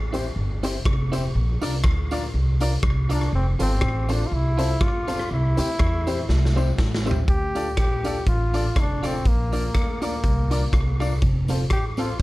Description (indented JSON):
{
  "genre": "ska",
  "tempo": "122 BPM",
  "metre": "4/4",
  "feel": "swing 56% on 8ths",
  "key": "F major",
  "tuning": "A4 = 440 Hz",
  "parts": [
    { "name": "upright bass", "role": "bass", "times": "0.0-12.2 s", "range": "F1 to E2", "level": "-23 LUFS", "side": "equal", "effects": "none" },
    { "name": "clean electric guitar", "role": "accompaniment", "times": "0.1-12.1 s", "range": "C4 to D5", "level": "-32 LUFS", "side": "right 4 dB", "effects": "none" },
    { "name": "clear upright piano", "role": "stabs", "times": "0.1-12.2 s", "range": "C4 to D5", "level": "-30 LUFS", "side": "left 3 dB", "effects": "none" },
    { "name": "raw garage drum kit", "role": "drums", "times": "0.1-12.2 s", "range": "hi-hat, kick drum, rim click, snare drum, toms", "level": "-25 LUFS", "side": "equal", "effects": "none" },
    { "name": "tambourine", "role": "percussion", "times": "0.1-12.1 s", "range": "none", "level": "-46 LUFS", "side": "left 2 dB", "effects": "none" },
    { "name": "brilliant trombone", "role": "melody", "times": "3.1-12.2 s", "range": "Bb3 to G4", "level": "-28 LUFS", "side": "equal", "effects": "slapback echo" }
  ],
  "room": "little or no reverb",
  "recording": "dark, warm production",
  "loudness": "-20 LUFS",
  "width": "side -19 dB against mid",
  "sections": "0.0-7.3 A section; 7.3-12.2 B section",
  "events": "drum fill 6.3-7.3",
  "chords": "0.0 C; 1.3 Bb; 3.3 F; 5.3 C; 7.3 Dm; 9.3 Bb; 11.2 F"
}